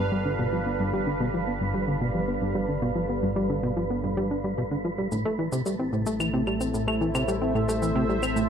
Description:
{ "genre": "ambient, sequencer-driven space music", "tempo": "111 BPM", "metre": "4/4", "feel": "straight", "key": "unclear", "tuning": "A4 = 440 Hz", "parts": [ { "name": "sweeping resonant pad", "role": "sustained chords", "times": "0.0-8.5 s", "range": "A2 to F5", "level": "-31 LUFS", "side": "equal", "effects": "chorus" }, { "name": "plucky analog bass", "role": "riff", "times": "0.0-8.5 s", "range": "G2 to D4", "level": "-26 LUFS", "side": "equal", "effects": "tape echo" }, { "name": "analog drone", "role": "bass", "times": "0.0-8.5 s", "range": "G1 to A1", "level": "-34 LUFS", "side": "equal", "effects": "chorus" }, { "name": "wind-like tuned noise texture", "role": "texture", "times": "0.0-8.5 s", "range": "A4 to B4", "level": "-33 LUFS", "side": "right 2 dB", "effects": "built-in reverb" }, { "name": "cabasa and claves", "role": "percussion", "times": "5.1-8.5 s", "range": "none", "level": "-34 LUFS", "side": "equal", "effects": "tape echo" } ], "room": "moderate plate reverb, RT60 3.0 s", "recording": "none", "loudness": "-24 LUFS", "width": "side -8 dB against mid", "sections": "0.0-8.5 A section", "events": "filter sweep on analog synth bass 0.0-8.5", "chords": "0.0 G7; 5.1 Am", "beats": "0.26 | 0.80 1.34 1.88 2.42 | 2.96 3.50 4.04 4.58 | 5.12 5.66 6.20 6.74 | 7.28 7.82 8.36" }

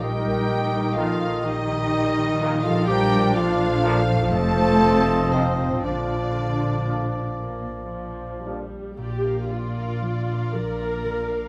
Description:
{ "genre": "classical", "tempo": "37-43 BPM (dotted quarters)", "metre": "6/8", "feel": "rubato", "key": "Bb major", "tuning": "A4 = 441 Hz", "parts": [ { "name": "muted studio violin section", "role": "melody", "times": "0.0-11.5 s", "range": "C5 to A5", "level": "-33 LUFS", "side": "equal", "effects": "none" }, { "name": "mellow clarinet", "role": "second line", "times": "0.0-7.4 s", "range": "C4 to A4", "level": "-30 LUFS", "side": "equal", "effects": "none" }, { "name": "mellow flute section", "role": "second line", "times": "0.0-7.3 s", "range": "Eb4 to C5", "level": "-35 LUFS", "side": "equal", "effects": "none" }, { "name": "muted studio violin section", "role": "second line", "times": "0.0-11.5 s", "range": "F4 to A5", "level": "-36 LUFS", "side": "equal", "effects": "none" }, { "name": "warm oboe", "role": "second line", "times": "0.0-8.6 s", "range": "D5 to Eb5", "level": "-34 LUFS", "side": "equal", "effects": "none" }, { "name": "mellow bassoon", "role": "accompaniment", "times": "0.0-8.6 s", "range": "Eb3 to F3", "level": "-32 LUFS", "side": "equal", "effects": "none" }, { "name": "muted studio viola section", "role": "accompaniment", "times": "0.0-11.5 s", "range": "Eb3 to Bb4", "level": "-32 LUFS", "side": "equal", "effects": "none" }, { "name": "concert harp", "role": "arpeggios", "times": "0.0-11.5 s", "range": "F2 to F5", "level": "-37 LUFS", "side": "equal", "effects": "none" }, { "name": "muted studio cello section", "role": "bass", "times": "0.0-11.5 s", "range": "Bb2 to A3", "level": "-30 LUFS", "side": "equal", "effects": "none" }, { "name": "muted studio double bass section", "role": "bass", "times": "0.0-11.5 s", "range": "F1 to Bb1", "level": "-30 LUFS", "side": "equal", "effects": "none" }, { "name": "clear trombone section", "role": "sustained chords", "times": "1.0-8.6 s", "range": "F2 to F3", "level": "-36 LUFS", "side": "equal", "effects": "none" }, { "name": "mellow French horn section", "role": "sustained chords", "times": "1.0-8.6 s", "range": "Bb3 to Eb4", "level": "-34 LUFS", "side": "equal", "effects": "none" } ], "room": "light reverb", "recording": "close, detailed microphones", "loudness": "-23 LUFS", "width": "mono", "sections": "0.0-9.0 A section; 9.0-11.5 B section", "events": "none", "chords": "0.0 Eb/Bb; 4.3 F7; 5.8 Bb", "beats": "| 0.03 1.45 | 2.88 4.33 | 5.84 7.38 | 8.97 10.55" }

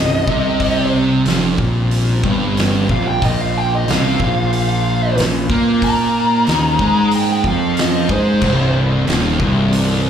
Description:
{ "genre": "stoner and doom metal", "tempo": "92 BPM", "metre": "4/4", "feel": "straight", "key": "C minor", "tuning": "A4 = 440 Hz", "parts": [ { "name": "fuzz lead guitar", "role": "melody", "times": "0.0-8.7 s", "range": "C5 to Bb5", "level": "-20 LUFS", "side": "left 1 dB", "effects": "distortion, slapback echo, tape echo" }, { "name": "tonewheel organ", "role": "sustained chords", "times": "0.0-10.1 s", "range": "C3 to C5", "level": "-30 LUFS", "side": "left 1 dB", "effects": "none" }, { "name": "thick fuzz guitar", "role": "riff", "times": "0.0-10.1 s", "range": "C2 to Bb3", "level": "-22 LUFS", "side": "left 8 dB", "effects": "distortion, slapback echo" }, { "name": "thick fuzz guitar", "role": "riff", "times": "0.0-10.1 s", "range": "C2 to Bb3", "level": "-19 LUFS", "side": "right 7 dB", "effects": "distortion, slapback echo" }, { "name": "fuzz fingered electric bass", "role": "bass", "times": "0.0-10.1 s", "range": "C1 to Bb2", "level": "-20 LUFS", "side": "left 1 dB", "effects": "overdrive" }, { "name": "oversized low-tuned drum kit", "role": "drums", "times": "0.3-9.9 s", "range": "crash cymbal, hi-hat, kick drum, snare drum", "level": "-22 LUFS", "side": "left 1 dB", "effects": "none" }, { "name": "crunchy overdriven guitar", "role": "riff", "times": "8.4-10.1 s", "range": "C2 to Eb2", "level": "-21 LUFS", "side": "left 1 dB", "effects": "none" } ], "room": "light reverb", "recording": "live gig heard through the venue's PA, club reverb", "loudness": "-13 LUFS", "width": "side -8 dB against mid", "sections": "0.0-10.1 A section", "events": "lead electric guitar solo 0.0-10.1", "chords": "0.0 Cm; 3.2 Bb5; 8.4 Cm", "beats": "| 0.61 1.26 1.92 2.57 | 3.22 3.87 4.52 5.18 | 5.83 6.48 7.13 7.78 | 8.44 9.09 9.74" }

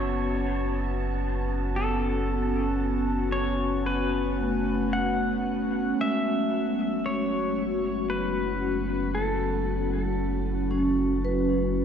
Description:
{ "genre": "ambient", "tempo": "57 BPM", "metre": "4/4", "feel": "straight", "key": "F# minor", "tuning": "A4 = 441 Hz", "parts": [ { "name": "pedal steel guitar", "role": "melody", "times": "0.0-9.9 s", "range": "A4 to F#5", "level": "-32 LUFS", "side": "left 1 dB", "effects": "shimmer reverb, diffuse ambient delay" }, { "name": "warbly tape-like pad", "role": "sustained chords", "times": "0.0-11.8 s", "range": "F#3 to F#4", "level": "-28 LUFS", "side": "equal", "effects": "chorus, built-in reverb, phaser, shimmer reverb" }, { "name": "vibraphone with medium mallets", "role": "arpeggios", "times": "0.0-11.8 s", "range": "G#3 to B4", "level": "-31 LUFS", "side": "equal", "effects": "shimmer reverb, diffuse ambient delay" }, { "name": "warm sub bass", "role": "bass", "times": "0.0-11.8 s", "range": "F#1", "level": "-31 LUFS", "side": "equal", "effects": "none" }, { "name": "wind-like tuned noise texture", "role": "texture", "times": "0.0-6.0 s", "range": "A5", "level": "-41 LUFS", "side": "right 3 dB", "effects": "built-in reverb, shimmer reverb" } ], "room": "wet scoring stage reverb, RT60 2.0 s", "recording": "dark, warm production", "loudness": "-24 LUFS", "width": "side -8 dB against mid", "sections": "0.0-6.0 A section; 6.0-11.8 B section", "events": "filter sweep on ambient pad 6.0-11.8", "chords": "0.0 Aadd9/F#; 6.0 F#7(no3)", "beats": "0.72 | 1.77 2.82 3.87 4.93 | 5.98 7.03 8.08 9.14 | 10.19 11.24" }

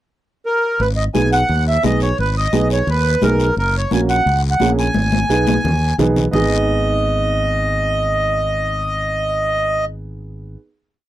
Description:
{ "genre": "latin, cumbia", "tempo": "173 BPM", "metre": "4/4", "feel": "straight", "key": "G# minor", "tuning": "A4 = 440 Hz", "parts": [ { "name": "accordion", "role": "melody", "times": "0.5-9.9 s", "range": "A#4 to G#5", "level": "-18 LUFS", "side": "right 1 dB", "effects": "none" }, { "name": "fingered electric bass", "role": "bass", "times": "0.8-10.6 s", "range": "F#1 to D#2", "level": "-20 LUFS", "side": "equal", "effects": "none" }, { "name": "congas", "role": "percussion", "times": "0.8-6.4 s", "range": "none", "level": "-22 LUFS", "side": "left 2 dB", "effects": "none" }, { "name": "guiro", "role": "percussion", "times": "0.8-6.4 s", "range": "none", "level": "-31 LUFS", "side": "left 10 dB", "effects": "none" }, { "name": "dark upright piano", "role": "accompaniment", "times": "1.1-10.6 s", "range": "A#3 to G#4", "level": "-21 LUFS", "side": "right 3 dB", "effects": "none" } ], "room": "light reverb", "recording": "dry, close 1970s-style studio recording", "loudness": "-15 LUFS", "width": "side -13 dB against mid", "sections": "0.0-0.8 pickup bar; 0.8-6.3 A section; 6.3-9.1 final chord", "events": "drum fill 5.0-6.3", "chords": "0.0 N.C.; 0.8 G#m; 3.6 F#; 5.0 G#m", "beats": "0.10 0.45 | 0.80 1.14 1.49 1.83 | 2.18 2.53 2.87 3.22 | 3.57 3.91 4.26 4.61 | 4.95 5.30 5.64 5.99 | 6.34 6.68 7.03 7.37 | 7.72 8.06 8.41 8.75" }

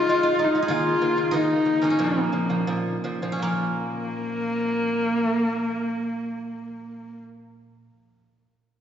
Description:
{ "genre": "mongolian traditional, Mongolian folk", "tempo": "79-100 BPM", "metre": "4/4", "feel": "straight", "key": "Bb yu mode", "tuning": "A4 = 440 Hz", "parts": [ { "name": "rich horsehead fiddle", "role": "melody", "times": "0.0-7.2 s", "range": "Bb3 to F4", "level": "-24 LUFS", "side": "left 1 dB", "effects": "none" }, { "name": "steel-string zither", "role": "second line", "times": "0.0-7.9 s", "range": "Bb3 to Ab4", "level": "-29 LUFS", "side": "right 2 dB", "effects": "none" }, { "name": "lute", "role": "arpeggios", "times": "0.0-7.9 s", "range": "Bb2 to Eb4", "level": "-28 LUFS", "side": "right 1 dB", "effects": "none" } ], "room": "wet concert hall reverb, RT60 2.2 s", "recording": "recorded in a church or concert hall, nothing above 7.7 kHz", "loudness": "-22 LUFS", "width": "side -9 dB against mid", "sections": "0.0-3.4 A section; 3.4-6.5 B section", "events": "slowing down 0.0-3.4", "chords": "0.0 Ab5; 0.7 Eb5; 2.0 Bb5", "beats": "0.10 | 0.71 1.34 2.00 2.69 | 3.42 4.18 4.94 5.70" }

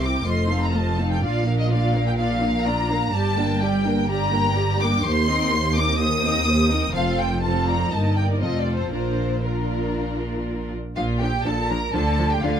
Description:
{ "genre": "quick classical-period movement for string orchestra", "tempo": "124 BPM", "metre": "4/4", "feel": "rubato", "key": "Bb major", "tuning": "A4 = 442 Hz", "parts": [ { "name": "warm symphonic violin section", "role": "melody", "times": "0.0-12.6 s", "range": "Bb4 to Eb6", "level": "-25 LUFS", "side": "left 1 dB", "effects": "none" }, { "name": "rich symphonic violin section", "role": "second line", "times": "0.0-12.6 s", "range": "F4 to G5", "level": "-31 LUFS", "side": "left 1 dB", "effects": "none" }, { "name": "rich studio viola section", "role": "accompaniment", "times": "0.0-12.5 s", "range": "F3 to G4", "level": "-26 LUFS", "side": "equal", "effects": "none" }, { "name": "clear symphonic cello section", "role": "bass", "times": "0.0-12.6 s", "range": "Eb2 to D3", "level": "-26 LUFS", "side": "right 1 dB", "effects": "none" }, { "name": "rich symphonic double bass section", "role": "bass", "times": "0.0-12.6 s", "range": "F1 to Eb2", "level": "-25 LUFS", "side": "right 1 dB", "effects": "none" } ], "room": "light reverb", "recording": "close, detailed microphones", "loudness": "-19 LUFS", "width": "side -8 dB against mid", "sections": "0.0-11.0 A section; 11.0-12.6 B section", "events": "none", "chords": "0.3 F7; 1.2 Bb; 3.1 Gm; 5.0 Cm7/Eb; 7.0 F; 7.9 Eb/G; 8.4 F; 8.9 Bb; 11.9 Dm", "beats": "0.26 0.73 | 1.22 1.70 2.18 2.65 | 3.13 3.61 4.09 4.57 | 5.05 5.53 6.00 6.48 | 6.96 7.44 7.92 8.42 | 8.93 9.44 9.95 10.47 | 10.97 11.46 11.95 12.43" }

